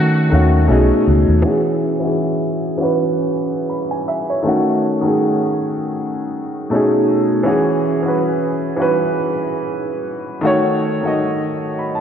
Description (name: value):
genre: hip hop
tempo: 80 BPM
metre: 4/4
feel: swing 58% on 16ths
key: E major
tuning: A4 = 439 Hz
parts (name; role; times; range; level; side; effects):
- trumpet with metal mute; melody; 0.0-0.7 s; F#4; -26 LUFS; left 1 dB; low-pass filter, analog delay
- warm upright piano; accompaniment; 0.0-12.0 s; B2 to B5; -16 LUFS; equal; low-pass filter
- vintage muted fingered electric bass; bass; 0.0-1.4 s; B1 to D#3; -14 LUFS; equal; none
room: wet lush hall reverb, RT60 2.9 s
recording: dreamy mix soaked in reverb, cassette tape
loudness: -15 LUFS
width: side -8 dB against mid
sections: 0.0-1.4 A section; 1.4-12.0 B section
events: filter sweep on upright piano 1.4-12.0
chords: 0.0 D#m7b5; 0.7 B13; 1.4 E69; 4.4 D#m7b5; 6.7 B13; 7.4 E69; 10.4 D#m7b5